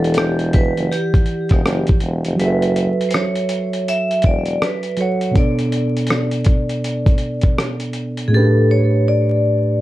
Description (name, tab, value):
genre	lo-fi hip hop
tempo	81 BPM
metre	4/4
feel	swing 62% on 16ths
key	unclear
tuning	A4 = 440 Hz
part	vibraphone with hard mallets	melody	0.0-9.8 s	G4 to E5	-22 LUFS	equal	analog delay, plate reverb
part	mellow tine electric piano	accompaniment	0.0-9.8 s	A2 to F#5	-18 LUFS	right 1 dB	none
part	clear tuba	bass	0.0-4.6 s	E1 to F#1	-21 LUFS	equal	none
part	dusty soul sampler-style drum kit	drums	0.0-8.3 s	hi-hat, kick drum, rim click	-18 LUFS	equal	none
room	light reverb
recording	dark, warm production, vinyl crackle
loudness	-15 LUFS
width	side -16 dB against mid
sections	0.0-9.8 A section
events	kick muted 2.4-3.1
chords	0.0 Em9; 2.4 F#m7; 5.4 Bm7; 8.3 A9sus4